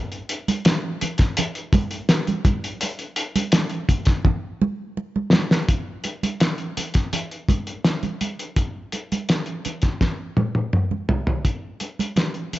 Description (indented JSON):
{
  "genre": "soul",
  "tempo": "83 BPM",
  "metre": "4/4",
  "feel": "straight",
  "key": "none",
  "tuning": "none",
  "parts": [
    { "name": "cloth-damped thuddy drum kit", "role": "drums", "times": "0.1-12.6 s", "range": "hi-hat, kick drum, snare drum, toms", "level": "-20 LUFS", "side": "equal", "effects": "none" },
    { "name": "congas", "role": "percussion", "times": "0.5-12.6 s", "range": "none", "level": "-26 LUFS", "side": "right 4 dB", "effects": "none" }
  ],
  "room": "light reverb",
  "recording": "nothing above 7.6 kHz",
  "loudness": "-20 LUFS",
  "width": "side -16 dB against mid",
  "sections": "0.0-5.7 A section; 5.7-11.4 B section; 11.4-12.6 C section",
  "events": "drum fill 4.2-5.7, 10.0-11.4",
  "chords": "none"
}